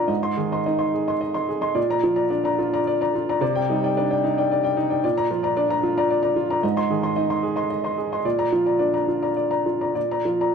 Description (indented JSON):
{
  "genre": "neoclassical minimalist piano",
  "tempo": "110 BPM",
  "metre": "3/4",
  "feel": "rubato",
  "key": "Bb mixolydian",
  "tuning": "A4 = 440 Hz",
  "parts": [
    { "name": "clear upright piano", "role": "solo", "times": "0.0-10.5 s", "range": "Ab2 to C6", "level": "-20 LUFS", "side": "equal", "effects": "none" }
  ],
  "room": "moderate recital hall reverb, RT60 1.3 s",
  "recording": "dark, warm production",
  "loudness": "-20 LUFS",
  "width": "side -6 dB against mid",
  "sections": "0.0-10.5 A section",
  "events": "none",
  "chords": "0.1 Ab; 1.8 Bb; 3.4 Cmadd9; 5.0 Bb; 6.6 Ab; 8.2 Bb"
}